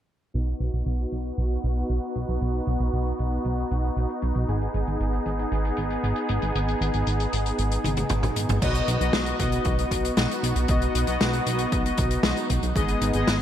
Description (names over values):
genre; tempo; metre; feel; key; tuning
synthwave; 116 BPM; 4/4; straight; B major; A4 = 440 Hz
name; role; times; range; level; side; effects
soft supersaw; sustained chords; 0.3-13.4 s; G#3 to G#4; -28 LUFS; equal; vintage 12-bit sampler grit, sidechain pumping
chorused synth bass; bass; 0.3-13.4 s; G#1 to B1; -26 LUFS; equal; none
warm soul drum kit; drums; 0.3-13.4 s; crash cymbal, hi-hat, snare drum, toms; -28 LUFS; left 1 dB; none
analog synth brass; stabs; 8.6-13.4 s; B3 to D#5; -28 LUFS; left 3 dB; chorus, digital delay
electronic kick drum; drums; 8.6-12.9 s; none; -27 LUFS; equal; none
room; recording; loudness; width
moderate plate reverb, RT60 2.8 s; bright 1980s-style digital production, low-pass filter; -22 LUFS; side -10 dB against mid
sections
0.3-8.6 A section; 8.6-13.4 B section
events
filter sweep on analog synth bass 0.3-8.6; filter sweep 0.3-8.6; drum fill 7.8-8.6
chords
0.3 B; 4.5 G#m; 8.6 B; 12.8 G#m